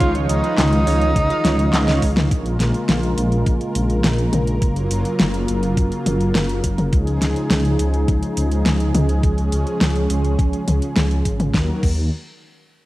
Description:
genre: synthwave.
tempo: 104 BPM.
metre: 4/4.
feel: straight.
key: unclear.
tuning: A4 = 443 Hz.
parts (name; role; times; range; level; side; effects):
breathy tenor saxophone; melody; 0.0-2.2 s; Eb4 to F4; -22 LUFS; right 1 dB; cassette tape, tape echo.
brassy analog pad; sustained chords; 0.0-11.8 s; Db3 to F5; -23 LUFS; equal; chorus, sidechain pumping, cassette tape.
chorused polysynth; stabs; 0.0-2.0 s; Eb4 to F5; -27 LUFS; right 8 dB; cassette tape, tape echo.
dark detuned saw bass; bass; 0.0-12.1 s; Gb1 to Eb2; -20 LUFS; equal; sidechain pumping.
electronic kick drum; drums; 0.0-11.9 s; none; -20 LUFS; equal; cassette tape.
pop drum kit; drums; 0.0-11.9 s; crash cymbal, handclaps, hi-hat, snare drum, toms; -21 LUFS; equal; cassette tape.
room: light reverb, digital ambience.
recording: home recording on cassette.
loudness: -16 LUFS.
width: side -17 dB against mid.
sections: 0.0-2.3 A section; 2.3-11.5 B section; 11.5-12.9 C section.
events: drum fill 1.4-2.3; filter sweep on detuned saw bass 2.3-11.5.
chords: 0.0 Dbadd9; 2.3 Bbm7; 4.6 Gbmaj7; 6.9 Dbadd9; 11.5 Ebm.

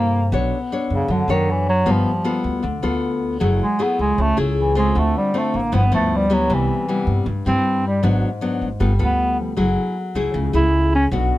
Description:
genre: bossa nova.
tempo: 156 BPM.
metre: 4/4.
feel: straight.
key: unclear.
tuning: A4 = 440 Hz.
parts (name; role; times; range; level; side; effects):
clear bass clarinet; melody; 0.0-11.1 s; C#3 to E4; -20 LUFS; right 1 dB; none.
nylon-string guitar; accompaniment; 0.0-11.4 s; G2 to C#5; -22 LUFS; left 3 dB; none.
upright bass; bass; 0.0-11.3 s; F#1 to G2; -21 LUFS; right 1 dB; none.
room: little or no reverb.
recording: close, detailed microphones.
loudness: -17 LUFS.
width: side -16 dB against mid.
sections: 0.0-11.4 A section.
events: bass clarinet solo 0.0-11.4.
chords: 0.3 Bm9; 1.9 G9; 3.4 F#m9; 4.9 Dm7; 5.7 G6; 6.5 Cmaj7; 8.0 G#m7b5; 8.8 G9; 9.6 F#m9.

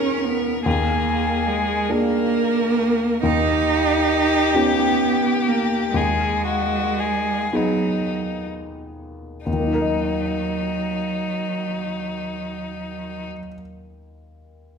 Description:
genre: classical, slow romantic movement for piano trio.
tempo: 29-49 BPM (dotted quarters).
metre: 6/8.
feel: rubato.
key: Eb minor.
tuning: A4 = 441 Hz.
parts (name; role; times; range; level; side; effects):
rich violin; melody; 0.0-13.3 s; Eb4 to Bb4; -25 LUFS; left 7 dB; none.
rich cello; second line; 0.0-13.3 s; Gb3 to Eb4; -22 LUFS; right 5 dB; none.
warm grand piano; accompaniment; 0.0-14.8 s; Eb2 to Eb5; -25 LUFS; left 2 dB; none.
room: wet recital hall reverb, RT60 1.3 s.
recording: none.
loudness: -19 LUFS.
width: side -6 dB against mid.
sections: 0.0-9.5 A section; 9.5-13.2 B section.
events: slowing down 1.9-9.5.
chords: 0.0 Abm/Eb; 0.7 Bb7/Eb; 3.2 Eb7; 5.9 Abm/Eb; 9.5 Ebm.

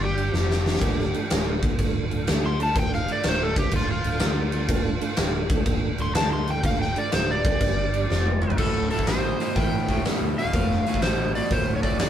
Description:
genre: blues rock power trio and southern rock.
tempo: 124 BPM.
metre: 4/4.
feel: swing 67% on 8ths.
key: D minor.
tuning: A4 = 440 Hz.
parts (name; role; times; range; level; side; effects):
overdriven slide guitar; melody; 0.0-12.1 s; F4 to C6; -28 LUFS; equal; none.
mellow tonewheel organ; sustained chords; 0.0-12.1 s; F3 to D5; -32 LUFS; right 3 dB; chorus vibrato, fast rotary speaker.
vintage muted fingered electric bass; bass; 0.0-12.1 s; D1 to D2; -28 LUFS; equal; none.
huge arena drum kit; drums; 0.2-12.1 s; crash cymbal, hi-hat, kick drum, snare drum, toms; -25 LUFS; equal; none.
overdriven electric guitar; riff; 8.6-12.1 s; D2 to B2; -26 LUFS; equal; none.
room: moderate studio reverb, RT60 0.8 s.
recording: band playing live in one room.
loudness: -21 LUFS.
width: side -10 dB against mid.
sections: 0.0-8.6 A section; 8.6-12.1 B section.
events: electric slide guitar solo 0.0-8.6; drum fill 0.3-0.8, 8.1-8.6.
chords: 0.3 F5; 0.8 Dm; 7.6 G5; 8.1 F5; 8.6 Dm7.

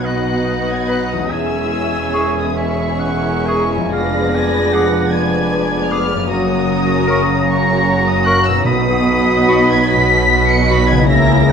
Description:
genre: classical.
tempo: 42-53 BPM (dotted quarters).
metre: 6/8.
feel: rubato.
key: B major.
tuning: A4 = 441 Hz.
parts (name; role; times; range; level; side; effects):
muted studio violin section; melody; 0.0-11.5 s; C#6 to C#7; -22 LUFS; left 3 dB; none.
clear oboe; second line; 0.0-11.5 s; D#5 to B5; -21 LUFS; right 1 dB; none.
muted studio violin section; second line; 0.0-11.5 s; G#4 to F#5; -25 LUFS; left 3 dB; none.
warm French horn section; sustained chords; 0.0-11.5 s; A#3 to F#4; -23 LUFS; left 4 dB; none.
warm trombone section; sustained chords; 0.0-11.5 s; B2 to G#3; -23 LUFS; right 4 dB; none.
concert harp; arpeggios; 0.0-11.5 s; E2 to G#4; -23 LUFS; left 7 dB; none.
muted studio cello section; bass; 0.0-11.5 s; E2 to C#3; -22 LUFS; right 3 dB; none.
muted studio double bass section; bass; 0.0-11.5 s; E1 to C#2; -22 LUFS; right 3 dB; none.
muted studio viola section; accompaniment; 0.1-11.5 s; F#3 to G#4; -23 LUFS; right 2 dB; none.
clear clarinet; second line; 0.9-10.8 s; F#4 to B4; -24 LUFS; equal; none.
silver concert flute; second line; 0.9-10.9 s; B5 to D6; -23 LUFS; left 1 dB; none.
timpani; percussion; 8.6-9.9 s; B2; -24 LUFS; right 3 dB; none.
room: wet recital hall reverb, RT60 1.6 s.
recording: none.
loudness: -13 LUFS.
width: side -6 dB against mid.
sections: 0.0-11.5 A section.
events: none.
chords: 0.0 B; 1.3 C#m/E; 3.9 Fdim7; 6.3 F#; 8.7 B.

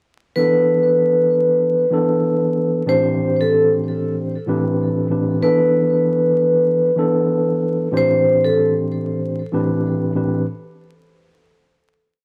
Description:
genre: hip hop.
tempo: 95 BPM.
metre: 4/4.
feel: swing 57% on 16ths.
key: A minor.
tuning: A4 = 440 Hz.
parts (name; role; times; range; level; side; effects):
vibraphone with hard mallets; melody; 0.4-8.7 s; A4 to C5; -19 LUFS; equal; high-pass filter, low-pass filter, cassette tape, tape echo.
mellow tine electric piano; accompaniment; 0.4-10.5 s; A2 to C5; -21 LUFS; equal; cassette tape, high-pass filter, low-pass filter.
room: moderate spring reverb, RT60 1.9 s, small room ambience.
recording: home recording on cassette, vinyl crackle.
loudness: -18 LUFS.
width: mono.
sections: 0.4-10.5 hook.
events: none.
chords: 0.4 E7sus4; 2.9 Am11; 5.4 E7sus4; 7.9 Am11.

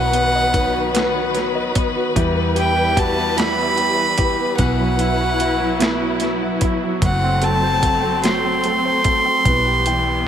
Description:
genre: six-eight pop ballad.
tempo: 49 BPM (dotted quarters).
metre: 6/8.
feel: straight.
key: E minor.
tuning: A4 = 439 Hz.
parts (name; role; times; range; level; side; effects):
warm violin; melody; 0.0-10.3 s; F#5 to C6; -20 LUFS; equal; ping-pong delay.
warm concert grand piano; accompaniment; 0.0-10.3 s; B2 to G5; -24 LUFS; right 6 dB; none.
warm studio string section; sustained chords; 0.0-10.3 s; D#3 to B4; -23 LUFS; left 2 dB; none.
fingerpicked plugged-in steel-string acoustic guitar; arpeggios; 0.0-10.3 s; E3 to F#4; -26 LUFS; left 9 dB; ping-pong delay.
vintage muted fingered electric bass; bass; 0.0-10.3 s; F#1 to E2; -24 LUFS; equal; none.
dusty soul sampler-style drum kit; drums; 0.1-10.0 s; hi-hat, kick drum, snare drum; -21 LUFS; equal; overdrive.
room: light reverb, small room ambience.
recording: none.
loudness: -16 LUFS.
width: side -9 dB against mid.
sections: 0.0-10.3 A section.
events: none.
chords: 0.0 B; 2.2 Emadd9; 4.6 Bsus4; 7.0 F#dim; 9.5 Em/B.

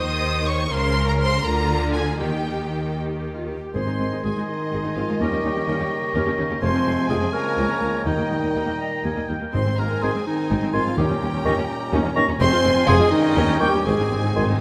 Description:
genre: classical.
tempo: 82 BPM (dotted quarters).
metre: 6/8.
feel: rubato.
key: Ab major.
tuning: A4 = 441 Hz.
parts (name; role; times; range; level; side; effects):
dark symphonic violin section; melody; 0.0-14.6 s; Eb5 to Eb6; -33 LUFS; equal; none.
rich chamber violin section; second line; 0.0-14.6 s; G4 to C6; -33 LUFS; equal; none.
rich symphonic viola section; accompaniment; 0.0-14.6 s; G3 to C5; -32 LUFS; equal; none.
rich symphonic cello section; bass; 0.0-14.5 s; Db2 to Eb3; -31 LUFS; equal; none.
rich symphonic double bass section; bass; 0.0-14.4 s; F1 to Eb2; -30 LUFS; equal; none.
timpani; percussion; 2.2-5.9, 8.1-11.7, 13.9-14.6 s; Ab2 to Eb3; -31 LUFS; equal; none.
clear oboe; second line; 3.7-14.4 s; G5 to Bb5; -33 LUFS; equal; none.
warm clarinet; second line; 3.7-14.6 s; Eb4 to C5; -29 LUFS; equal; none.
warm bassoon; accompaniment; 3.7-14.4 s; Eb3 to F3; -33 LUFS; equal; none.
silver concert flute; second line; 3.8-14.5 s; Bb5 to Db6; -33 LUFS; equal; none.
bright trombone section; sustained chords; 3.8-14.6 s; G2 to Db4; -33 LUFS; equal; none.
mellow French horn section; sustained chords; 3.8-14.6 s; Eb3 to C4; -31 LUFS; equal; none.
warm tuba; bass; 3.8-14.4 s; F1 to Eb2; -33 LUFS; equal; none.
room: wet scoring stage reverb, RT60 2.0 s.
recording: none.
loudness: -22 LUFS.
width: mono.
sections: 0.0-3.8 A section; 3.8-14.6 B section.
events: timpani fill 13.9-14.6.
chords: 0.0 Cm/Eb; 0.7 Bbm/Db; 1.4 Bb/D; 2.2 Eb; 3.8 Ab; 5.2 Eb7; 6.6 Fm; 7.3 Bbm7/Db; 8.1 Eb; 9.5 Ab; 11.0 Eb7; 12.4 Fm; 13.1 Eb7; 13.9 Ab.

